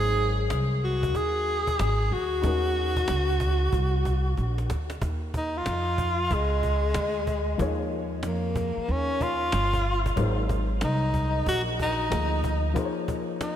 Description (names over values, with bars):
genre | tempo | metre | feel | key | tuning
hip hop, jazz-hop | 93 BPM | 4/4 | swing 64% on 16ths | Eb dorian | A4 = 441 Hz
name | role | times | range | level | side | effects
breathy tenor saxophone | melody | 0.0-13.6 s | Ab3 to Ab4 | -27 LUFS | equal | ping-pong delay
dark upright piano | accompaniment | 0.0-13.6 s | F3 to Eb5 | -34 LUFS | left 4 dB | none
upright bass | bass | 0.0-12.7 s | G1 to F2 | -27 LUFS | equal | none
cajon | drums | 0.2-13.6 s | none | -35 LUFS | equal | none
room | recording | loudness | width
moderate lush hall reverb, RT60 2.7 s | dreamy mix soaked in reverb | -24 LUFS | side -10 dB against mid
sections
0.0-5.0 A section; 5.0-13.6 B section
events
drum fill 4.4-5.0; tenor saxophone solo 5.0-13.6; break 12.8-13.6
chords
0.0 Ab9; 2.4 Ebm7; 5.0 Eb9sus4; 10.2 Ab13; 12.8 Eb9sus4